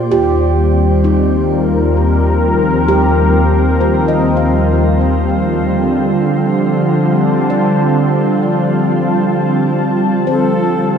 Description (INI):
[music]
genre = ambient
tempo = 65 BPM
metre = 3/4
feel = straight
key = unclear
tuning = A4 = 440 Hz
[part]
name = warm analog pad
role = sustained chords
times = 0.0-11.0 s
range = Eb2 to A5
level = -12 LUFS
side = equal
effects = chorus, shimmer reverb
[part]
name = handpan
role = arpeggios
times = 0.0-11.0 s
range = Eb4 to F5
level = -20 LUFS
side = right 2 dB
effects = shimmer reverb, tape echo
[part]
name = organ-like drone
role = drone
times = 1.5-11.0 s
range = F3 to C4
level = -20 LUFS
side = left 2 dB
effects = ensemble chorus, built-in reverb
[part]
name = breathy bright shakuhachi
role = melody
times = 10.3-11.0 s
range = A4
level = -20 LUFS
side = equal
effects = shimmer reverb
[sound]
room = wet lush hall reverb, RT60 2.9 s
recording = dreamy mix soaked in reverb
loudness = -11 LUFS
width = side -7 dB against mid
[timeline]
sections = 0.0-11.0 A section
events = none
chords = 0.1 Eb; 5.7 Dm